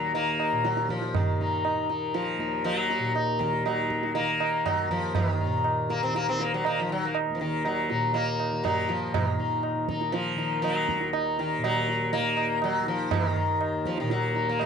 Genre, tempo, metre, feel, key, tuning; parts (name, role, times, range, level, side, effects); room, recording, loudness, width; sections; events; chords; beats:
indian classical, Hindustani; 120 BPM; 4/4; straight; A4 = 440 Hz
sitar; melody; 0.0-14.7 s; Eb3 to Eb4; -27 LUFS; left 2 dB
tanpura; drone; 0.0-14.7 s; Eb2 to Eb3; -31 LUFS; left 1 dB
tabla; percussion; 0.1-14.7 s; -30 LUFS; right 7 dB
light reverb; dry, close 1970s-style studio recording; -24 LUFS; side -6 dB against mid
0.0-9.1 A section; 9.1-14.7 B section
0.14 0.65 | 1.15 1.65 2.15 2.65 | 3.15 3.65 4.16 4.66 | 5.16 5.65 6.15 6.65 | 7.15 7.65 8.15 8.64 | 9.14 9.64 10.14 10.63 | 11.13 11.62 12.12 12.62 | 13.11 13.61 14.10 14.59